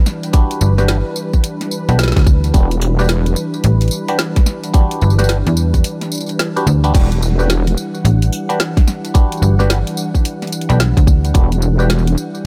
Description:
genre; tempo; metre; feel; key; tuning
glitch hop; 109 BPM; 4/4; swing 63% on 16ths; E minor; A4 = 440 Hz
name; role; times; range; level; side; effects
warm analog pad; sustained chords; 0.0-12.5 s; E3 to F#5; -25 LUFS; equal; chorus, sidechain pumping
drum and bass drum kit; drums; 0.1-12.4 s; crash cymbal, hi-hat, snare drum, tambourine; -24 LUFS; equal; none
clav; stabs; 0.3-11.9 s; D4 to B4; -25 LUFS; equal; phaser, sidechain pumping, tape echo
electronic kick drum; drums; 0.3-11.5 s; none; -13 LUFS; equal; none
slap-like FM bass; bass; 0.6-11.3 s; G1 to E2; -15 LUFS; equal; none
wobble bass; bass; 2.5-3.4, 6.9-7.8, 11.3-12.2 s; E1; -17 LUFS; equal; chorus
room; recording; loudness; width
little or no reverb; none; -15 LUFS; mono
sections
0.0-12.5 A section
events
break 5.8-6.9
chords
0.0 Em9

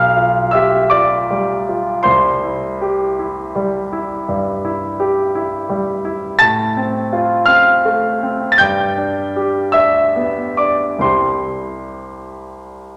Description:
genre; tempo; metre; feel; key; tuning
classical, romantic nocturne for solo piano; 45-57 BPM (dotted quarters); 12/8; rubato; C major; A4 = 440 Hz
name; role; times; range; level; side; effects
warm grand piano; solo; 0.0-13.0 s; B1 to A6; -16 LUFS; equal; none
room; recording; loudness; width
wet recital hall reverb, RT60 1.7 s; none; -16 LUFS; mono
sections
0.0-13.0 A section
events
none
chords
0.0 G7/B; 2.1 C; 6.4 F/A; 8.6 G; 11.0 C

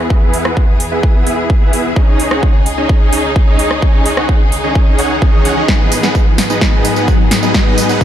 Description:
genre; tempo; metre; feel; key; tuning
EDM, festival progressive house; 129 BPM; 4/4; straight; unclear; A4 = 440 Hz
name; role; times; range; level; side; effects
clear studio string section; sustained chords; 0.0-8.0 s; C#2 to G#4; -20 LUFS; left 1 dB; sidechain pumping
supersaw chords; riff; 0.0-8.0 s; B3 to F#5; -16 LUFS; right 1 dB; sidechain pumping, low-pass filter, digital delay
riser; sound effects; 0.9-8.0 s; none; -24 LUFS; left 1 dB; none
electronic kick drum; drums; 0.1-8.0 s; none; -11 LUFS; equal; studio reverb
big-room dance drum kit; drums; 0.3-8.0 s; hi-hat, rim click, snare drum, tambourine; -18 LUFS; equal; studio reverb
room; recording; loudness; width
light reverb; dark, warm production; -10 LUFS; side -11 dB against mid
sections
0.0-8.0 A section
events
build-up 0.0-8.0; filter sweep on supersaw synth 0.0-8.0; riser 0.9-8.0; drum fill 5.7-8.0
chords
0.0 E; 2.0 C#sus2; 5.7 G#m

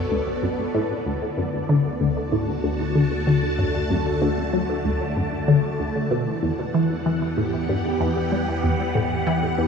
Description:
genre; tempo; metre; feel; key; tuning
ambient, sequencer-driven space music; 95 BPM; 4/4; straight; D major; A4 = 440 Hz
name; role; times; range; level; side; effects
phased string machine; sustained chords; 0.0-9.7 s; B2 to A5; -25 LUFS; equal; ensemble chorus, phaser
round analog bass; bass; 0.0-9.7 s; B1 to E2; -32 LUFS; equal; none
resonant blip pluck; riff; 0.1-9.7 s; D2 to G3; -22 LUFS; left 1 dB; phaser, analog delay
room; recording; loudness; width
wet huge ambient reverb, RT60 6.9 s; studio reverb; -20 LUFS; side -6 dB against mid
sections
0.0-9.7 A section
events
filter sweep on synth arpeggio sound 0.0-9.7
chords
0.0 Bm7; 1.1 D; 6.1 Em7

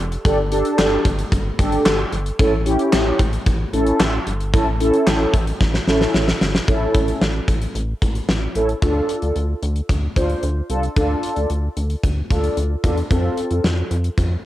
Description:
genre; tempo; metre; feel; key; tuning
synth-pop; 112 BPM; 4/4; straight; D minor; A4 = 440 Hz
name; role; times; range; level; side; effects
rubbery square bass; bass; 0.0-14.4 s; F1 to F2; -22 LUFS; equal; none
gated 80s drum kit; drums; 0.1-14.3 s; handclaps, hi-hat, kick drum, snare drum; -20 LUFS; equal; cassette tape
mellow synth brass; accompaniment; 0.3-13.6 s; C4 to C5; -20 LUFS; equal; chorus, cassette tape
room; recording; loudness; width
moderate spring reverb, RT60 2.0 s; home recording on cassette; -17 LUFS; side -14 dB against mid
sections
0.0-6.7 A section; 6.7-8.8 B section; 8.8-14.4 C section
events
drum fill 5.6-6.7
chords
0.0 Gsus2; 2.4 A; 8.8 Dm; 13.1 F

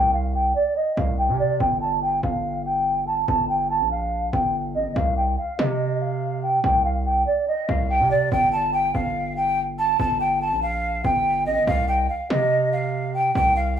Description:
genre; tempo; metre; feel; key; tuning
hip hop; 143 BPM; 4/4; half-time; G minor; A4 = 438 Hz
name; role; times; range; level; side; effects
mellow hollow jazz flute; melody; 0.0-13.8 s; D5 to A5; -21 LUFS; right 1 dB; low-pass filter
distorted 808-style bass; bass; 0.0-13.8 s; G1 to C3; -25 LUFS; right 1 dB; distortion
room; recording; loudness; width
moderate small room reverb, RT60 0.5 s; small room reverb; -20 LUFS; side -9 dB against mid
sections
0.0-13.8 A section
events
filter sweep on flute 0.0-8.3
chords
0.0 C5; 1.6 Gsus2; 5.0 C5; 8.3 Gsus2; 11.7 C5

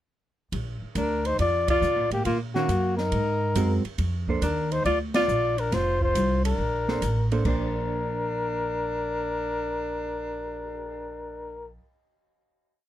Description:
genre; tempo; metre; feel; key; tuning
jazz, small-group swing and bop; 138 BPM; 4/4; swing 68% on 8ths; Bb major; A4 = 440 Hz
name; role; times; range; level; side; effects
upright bass; bass; 0.5-11.8 s; F1 to C3; -28 LUFS; equal; none
open jazz drum kit; drums; 0.5-10.8 s; crash cymbal, cymbal swell, hi-hat, kick drum, ride cymbal, snare drum; -34 LUFS; right 1 dB; none
breathy flugelhorn; melody; 1.0-11.7 s; F4 to D5; -27 LUFS; left 3 dB; none
breathy alto saxophone; second line; 1.0-11.7 s; Bb3 to F4; -32 LUFS; right 6 dB; none
hollow-body jazz guitar; accompaniment; 2.5-11.8 s; Eb3 to C5; -29 LUFS; right 5 dB; none
room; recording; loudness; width
little or no reverb; close, detailed microphones; -23 LUFS; side -12 dB against mid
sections
0.5-7.5 A section; 7.5-10.9 final chord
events
band accent 1.6, 5.1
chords
0.5 Bbmaj9; 2.3 Ebm7; 3.1 Ab9; 4.0 Bbmaj9; 7.5 Bbadd9

